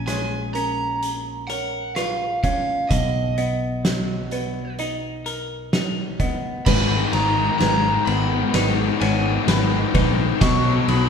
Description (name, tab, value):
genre	post-rock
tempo	64 BPM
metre	4/4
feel	straight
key	unclear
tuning	A4 = 442 Hz
part	overdriven semi-hollow guitar	melody	0.0-11.1 s	D#5 to C#6	-25 LUFS	right 2 dB	none
part	felt-muted upright piano	arpeggios	0.0-11.1 s	A#4 to D#5	-32 LUFS	right 5 dB	none
part	semi-hollow electric guitar	arpeggios	0.0-11.1 s	G#2 to B4	-28 LUFS	left 2 dB	none
part	picked electric bass	bass	0.0-11.1 s	G#1 to B1	-25 LUFS	equal	none
part	oversized low-tuned drum kit	drums	0.1-11.1 s	crash cymbal, hi-hat, kick drum, ride cymbal, rim click, snare drum	-24 LUFS	right 1 dB	none
part	deep dark ambient pad	sustained chords	8.2-11.1 s	B3 to D#5	-31 LUFS	right 2 dB	none
part	distorted electric guitar	riff	6.7-11.1 s	G#2 to F#3	-22 LUFS	left 7 dB	distortion
room	moderate recital hall reverb, RT60 1.7 s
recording	recorded in a church or concert hall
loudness	-19 LUFS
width	side -7 dB against mid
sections	0.0-6.7 A section; 6.7-11.1 B section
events	build-up 6.7-11.1; drum fill 6.7-11.1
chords	0.0 A#m7; 2.9 Bmaj7; 6.7 G#m; 10.4 B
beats	0.08 1.02 1.97 | 2.91 3.85 4.79 5.73 | 6.67 7.61 8.55 9.49 | 10.42